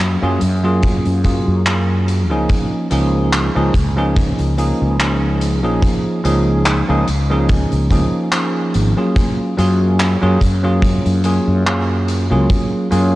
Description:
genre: vaporwave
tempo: 72 BPM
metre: 4/4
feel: swing 55% on 16ths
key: Db major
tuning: A4 = 440 Hz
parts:
  - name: barky tine electric piano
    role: accompaniment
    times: 0.0-13.2 s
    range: F3 to Ab4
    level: -17 LUFS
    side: equal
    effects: lush chorus, tape echo
  - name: fretless electric bass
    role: bass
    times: 0.0-13.2 s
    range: Ab1 to Gb2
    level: -17 LUFS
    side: equal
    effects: lush chorus
  - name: gated 80s drum kit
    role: drums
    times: 0.4-13.1 s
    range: handclaps, hi-hat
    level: -24 LUFS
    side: equal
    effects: none
  - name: kick drum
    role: drums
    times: 0.8-12.7 s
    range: none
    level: -16 LUFS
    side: equal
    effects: none
room: light reverb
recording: cassette tape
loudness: -13 LUFS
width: side -17 dB against mid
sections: 0.0-13.2 A section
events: none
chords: 0.0 Gbmaj9; 2.5 Db69; 9.2 Gbmaj9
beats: 0.00 0.83 1.67 | 2.50 3.33 4.17 5.00 | 5.83 6.67 7.50 8.33 | 9.16 10.00 10.83 11.66 | 12.50

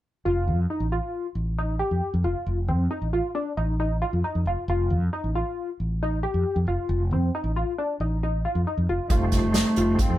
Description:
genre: progressive instrumental, band music in an uneven meter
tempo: 136 BPM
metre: 5/4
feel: straight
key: F mixolydian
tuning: A4 = 440 Hz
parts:
  - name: tight sequenced synth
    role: arpeggios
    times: 0.3-10.1 s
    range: C4 to G4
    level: -28 LUFS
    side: left 1 dB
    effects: chorus
  - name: mellow fretless electric bass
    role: bass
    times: 0.3-10.2 s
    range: F1 to F2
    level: -25 LUFS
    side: equal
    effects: none
  - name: breathy bass clarinet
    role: melody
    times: 9.1-10.2 s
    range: A3 to C4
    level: -24 LUFS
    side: equal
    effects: none
  - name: tonewheel organ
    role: accompaniment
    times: 9.1-10.2 s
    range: Eb3 to C4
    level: -31 LUFS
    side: right 2 dB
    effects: chorus vibrato, fast rotary speaker
  - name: unplugged drum kit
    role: drums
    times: 9.1-10.1 s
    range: hi-hat, kick drum, snare drum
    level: -23 LUFS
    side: equal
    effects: none
room: moderate studio reverb, RT60 0.6 s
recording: band playing live in one room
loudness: -23 LUFS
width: side -14 dB against mid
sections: 0.2-9.1 A section; 9.1-10.2 B section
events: none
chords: 0.2 F7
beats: | 0.25 0.69 1.14 1.58 2.02 | 2.47 2.91 3.35 3.80 4.24 | 4.68 5.12 5.57 6.01 6.45 | 6.90 7.34 7.78 8.22 8.66 | 9.11 9.55 9.99

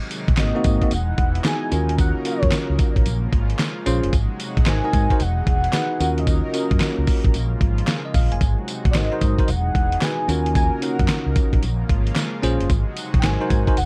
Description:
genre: R&B, new jack swing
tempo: 112 BPM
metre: 4/4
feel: swing 65% on 16ths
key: Eb dorian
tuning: A4 = 440 Hz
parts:
  - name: lush unison pad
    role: sustained chords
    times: 0.0-13.9 s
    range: B2 to Bb4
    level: -33 LUFS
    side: equal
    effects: chorus
  - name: dusty soul sampler-style drum kit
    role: drums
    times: 0.1-13.9 s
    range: handclaps, hi-hat, kick drum, snare drum, tambourine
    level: -23 LUFS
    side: equal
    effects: none
  - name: mellow fretless electric bass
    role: bass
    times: 0.3-13.9 s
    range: E1 to Ab2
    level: -25 LUFS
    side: equal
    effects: subtle chorus
  - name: warm velvety synth lead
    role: melody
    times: 0.4-13.9 s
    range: Db5 to G#5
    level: -30 LUFS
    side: equal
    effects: chorus
  - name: bell-like tine electric piano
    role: accompaniment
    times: 0.4-13.8 s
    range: Bb3 to Ab5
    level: -27 LUFS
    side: equal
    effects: none
  - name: group handclap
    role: percussion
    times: 0.4-13.4 s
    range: none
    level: -43 LUFS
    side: equal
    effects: none
room: little or no reverb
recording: dark, warm production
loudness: -20 LUFS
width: mono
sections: 0.0-13.9 A section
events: none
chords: 0.0 Ab7; 0.9 Emaj7; 1.7 Ebm7; 3.1 Bbm7; 4.1 Ab7; 5.2 Emaj7; 6.0 Ebm7; 7.3 Bbm7; 8.4 Ab7; 9.5 Emaj7; 10.3 Ebm7; 11.6 Bbm7; 12.7 Ab7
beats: 0.38 0.91 1.45 | 1.98 2.52 3.06 3.59 | 4.13 4.66 5.20 5.73 | 6.27 6.80 7.34 7.88 | 8.41 8.95 9.48 10.02 | 10.55 11.09 11.63 12.16 | 12.70 13.23 13.77

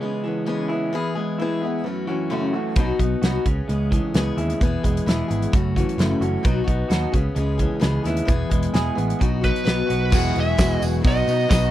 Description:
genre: folk rock and heartland rock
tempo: 130 BPM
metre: 4/4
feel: straight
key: E major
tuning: A4 = 440 Hz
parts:
  - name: picked old ladder-braced acoustic guitar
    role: accompaniment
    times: 0.0-11.7 s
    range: F#2 to G#4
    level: -26 LUFS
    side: left 4 dB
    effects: none
  - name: electric guitar through a small old amp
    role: riff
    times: 0.0-11.7 s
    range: E2 to G#4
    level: -26 LUFS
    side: right 1 dB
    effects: none
  - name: picked electric bass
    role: bass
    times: 2.8-11.7 s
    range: E1 to B2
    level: -24 LUFS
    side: equal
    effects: none
  - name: natural country drum kit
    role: drums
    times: 2.8-11.6 s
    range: crash cymbal, hi-hat, kick drum, snare drum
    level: -21 LUFS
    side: equal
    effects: none
  - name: biting lead guitar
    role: melody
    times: 9.4-11.7 s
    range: B4 to F#5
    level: -24 LUFS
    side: right 1 dB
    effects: overdrive
  - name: dark chamber string section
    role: sustained chords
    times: 10.1-11.7 s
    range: D#4 to B4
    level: -34 LUFS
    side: right 2 dB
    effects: none
  - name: tambourine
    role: percussion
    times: 10.1-11.7 s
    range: none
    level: -38 LUFS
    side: right 6 dB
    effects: none
room: little or no reverb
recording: dry, close 1970s-style studio recording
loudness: -19 LUFS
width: side -13 dB against mid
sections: 0.0-10.1 A section; 10.1-11.7 B section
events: none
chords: 0.0 C#m7; 0.9 E; 1.8 F#m7; 2.8 B; 3.5 C#m7; 4.6 E; 5.5 F#m7; 6.4 B; 7.1 C#m7; 8.3 E; 9.2 B; 10.1 Eadd9; 11.0 B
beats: 0.01 0.47 | 0.93 1.39 1.85 2.31 | 2.77 3.23 3.69 4.15 | 4.61 5.07 5.53 5.99 | 6.45 6.91 7.37 7.83 | 8.29 8.75 9.21 9.67 | 10.13 10.59 11.05 11.51

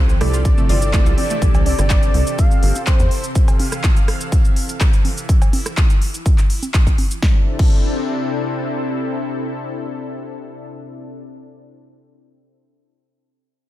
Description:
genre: progressive house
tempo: 124 BPM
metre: 4/4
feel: straight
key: C major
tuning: A4 = 441 Hz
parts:
  - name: wide unison lead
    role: melody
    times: 0.0-3.3 s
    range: C5 to F5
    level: -26 LUFS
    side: equal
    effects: cassette tape, sidechain pumping, ping-pong delay
  - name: airy dreamy lead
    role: second line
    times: 0.0-1.6 s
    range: C5 to D5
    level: -34 LUFS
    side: equal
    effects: none
  - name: lush unison pad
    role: sustained chords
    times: 0.0-11.2 s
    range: C3 to F5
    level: -25 LUFS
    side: left 2 dB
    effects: chorus, sidechain pumping
  - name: tight sequencer bass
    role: bass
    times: 0.0-3.1 s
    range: G1 to E2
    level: -19 LUFS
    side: equal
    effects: sidechain pumping
  - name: backwards swelling texture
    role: texture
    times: 0.1-5.3 s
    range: E3 to E6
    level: -33 LUFS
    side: right 4 dB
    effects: built-in reverb, sidechain pumping
  - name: big-room dance drum kit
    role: drums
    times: 0.1-7.7 s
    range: crash cymbal, handclaps, hi-hat, shaker, snare drum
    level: -26 LUFS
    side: equal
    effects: none
  - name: wide unison pluck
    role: arpeggios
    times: 0.2-1.4 s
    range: A3 to F4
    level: -29 LUFS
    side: right 1 dB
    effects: sidechain pumping, ping-pong delay
  - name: deep mellow chord stab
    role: stabs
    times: 0.2-1.4 s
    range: C3 to A4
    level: -26 LUFS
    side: right 3 dB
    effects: chorus, sidechain pumping, ping-pong delay
  - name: electronic rim click, congas and cowbell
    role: percussion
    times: 0.2-7.1 s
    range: none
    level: -29 LUFS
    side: right 3 dB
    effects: sidechain pumping on perc, sidechain pumping on snare
  - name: electronic kick drum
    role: drums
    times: 0.5-7.7 s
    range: none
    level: -14 LUFS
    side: equal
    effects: none
room: little or no reverb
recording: none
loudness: -15 LUFS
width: side -14 dB against mid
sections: 0.0-7.2 A section; 7.2-11.1 B section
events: drop 0.0-7.2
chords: 0.0 Fmaj7; 3.4 Fmaj7/C; 5.3 N.C.; 7.2 C6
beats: 0.45 0.94 | 1.42 1.90 2.39 2.87 | 3.35 3.84 4.32 4.81 | 5.29 5.77 6.26 6.74 | 7.22 7.71 8.19 8.68 | 9.16 9.64 10.13 10.61

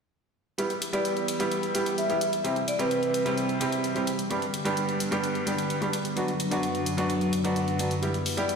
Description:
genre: EDM, festival progressive house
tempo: 129 BPM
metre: 4/4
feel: straight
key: E minor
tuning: A4 = 440 Hz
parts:
  - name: bright baby grand piano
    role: accompaniment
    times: 0.6-8.6 s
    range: G2 to G4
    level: -28 LUFS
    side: right 2 dB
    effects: vintage 12-bit sampler grit, tape echo
  - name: lush unison pad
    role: sustained chords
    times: 0.6-8.6 s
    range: F#2 to E5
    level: -31 LUFS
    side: left 2 dB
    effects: chorus, vintage 12-bit sampler grit
  - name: electronic hi-hat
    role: drums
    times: 0.6-8.6 s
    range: none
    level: -35 LUFS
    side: left 1 dB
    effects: none
  - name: vibraphone with medium mallets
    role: melody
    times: 0.9-3.3, 8.4-8.6 s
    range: B4 to E5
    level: -30 LUFS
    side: equal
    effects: ping-pong delay
room: wet lush hall reverb, RT60 1.8 s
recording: played on a big sound system in a bare room, large studio reverb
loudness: -25 LUFS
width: side -5 dB against mid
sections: 0.6-8.6 A section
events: none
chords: 0.6 Em; 2.4 C; 4.3 G; 6.2 Bm/F#; 8.0 Em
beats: | 0.58 1.05 1.51 1.98 | 2.45 2.91 3.38 3.84 | 4.31 4.77 5.24 5.70 | 6.17 6.63 7.10 7.56 | 8.03 8.49

